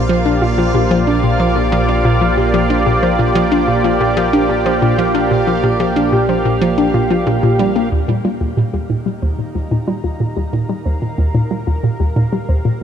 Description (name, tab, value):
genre	ambient, sequencer-driven space music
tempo	92 BPM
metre	4/4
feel	straight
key	unclear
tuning	A4 = 439 Hz
part	lush unison pad	sustained chords	0.0-12.8 s	Eb3 to Bb5	-18 LUFS	right 1 dB	chorus, shimmer reverb
part	soft round pluck	arpeggios	0.0-12.8 s	D4 to C5	-23 LUFS	left 3 dB	chorus, auto-pan, tape echo, shimmer reverb
part	hollow square pluck	riff	0.0-12.7 s	Eb2 to D4	-16 LUFS	equal	chorus, tape echo, shimmer reverb
part	fat analog bass	bass	0.0-7.9 s	Bb1	-22 LUFS	equal	none
part	bubbling stepped-filter texture	texture	0.0-12.8 s	F5	-26 LUFS	right 4 dB	chorus, built-in reverb, shimmer reverb
room	wet plate reverb, RT60 3.5 s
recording	none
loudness	-13 LUFS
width	side -8 dB against mid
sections	0.0-7.9 A section; 7.9-12.8 B section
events	fade-in on analog synth pad 7.9-12.8; fade-in on synth texture 7.9-12.8; filter sweep on synth arpeggio sound 7.9-12.8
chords	0.0 Bb6; 7.9 Eb